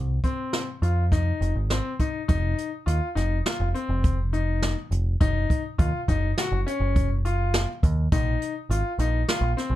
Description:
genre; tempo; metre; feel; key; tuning
progressive instrumental, band music in an uneven meter; 103 BPM; 5/4; straight; F phrygian; A4 = 440 Hz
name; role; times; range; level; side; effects
deep dub picked electric bass; bass; 0.0-9.8 s; F1 to F2; -24 LUFS; equal; none
bright concert grand piano; arpeggios; 0.2-9.8 s; C4 to Gb4; -29 LUFS; left 4 dB; none
jazz brush drum kit; drums; 0.2-9.7 s; hi-hat, kick drum, snare drum; -26 LUFS; equal; none
room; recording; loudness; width
little or no reverb; dark, warm production; -22 LUFS; side -14 dB against mid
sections
0.0-2.3 A section; 2.3-9.8 B section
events
none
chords
0.0 F7(no3); 2.3 F5; 5.2 Gb5; 8.1 Bb5

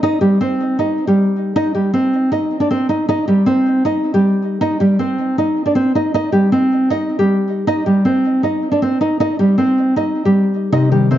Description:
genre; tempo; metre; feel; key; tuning
hip hop; 157 BPM; 4/4; half-time; C minor; A4 = 440 Hz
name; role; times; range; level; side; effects
nylon-string guitar; melody; 0.0-11.2 s; G3 to Eb5; -14 LUFS; equal; digital delay
warbly lo-fi synth keys; accompaniment; 10.7-11.2 s; C3 to Eb3; -13 LUFS; left 3 dB; chorus
room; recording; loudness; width
moderate concert hall reverb, RT60 1.7 s, studio reverb; dark, warm production, nothing above 7.5 kHz; -13 LUFS; side -12 dB against mid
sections
0.0-10.7 A section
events
none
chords
0.0 Cm

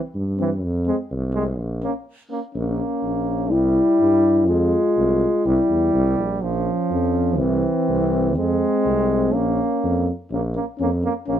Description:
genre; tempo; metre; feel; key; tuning
balkan folk, Balkan brass band; 124 BPM; 2/4; swing 54% on 16ths; Bb dorian sharp4; A4 = 440 Hz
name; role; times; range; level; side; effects
mellow tuba; bass; 0.1-11.4 s; Bb1 to G2; -23 LUFS; equal; none
clear trombone; accompaniment; 0.4-11.4 s; E3 to Bb3; -24 LUFS; right 4 dB; none
dark euphonium; accompaniment; 0.4-11.4 s; C4 to F4; -21 LUFS; left 2 dB; none
room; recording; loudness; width
moderate studio reverb, RT60 0.6 s; band playing live in one room; -18 LUFS; side -10 dB against mid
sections
0.0-2.6 A section; 2.6-10.3 A section; 10.3-11.4 B section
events
break 2.1-2.6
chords
0.0 C; 0.6 Fm; 1.6 Bbm; 3.5 C; 4.5 Fm; 5.5 C; 6.4 Bbm; 7.4 C; 8.4 Fm; 9.3 Bbm

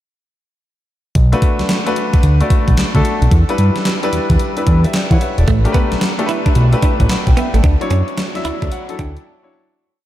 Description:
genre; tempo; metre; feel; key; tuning
R&B, new jack swing; 111 BPM; 4/4; swing 64% on 16ths; B minor; A4 = 440 Hz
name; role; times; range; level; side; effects
fat analog bass; bass; 1.2-9.2 s; E1 to E3; -13 LUFS; equal; none
gated 80s digital drum machine; drums; 1.2-9.3 s; handclaps, hi-hat, kick drum, snare drum; -16 LUFS; equal; gated reverb, gated reverb snare, overdrive
clear baby grand piano; accompaniment; 1.3-9.8 s; F#3 to B5; -19 LUFS; left 2 dB; none
direct-recorded clean electric guitar; riff; 5.5-9.1 s; A3 to E4; -23 LUFS; right 5 dB; lush chorus
room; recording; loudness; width
light reverb; none; -12 LUFS; side -13 dB against mid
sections
1.2-9.8 verse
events
fade-out 7.6-9.8; grand piano fill 8.2-9.8; break 9.3-9.8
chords
1.2 Bm7; 3.3 Em7; 5.5 A9sus4; 7.6 Dmaj9

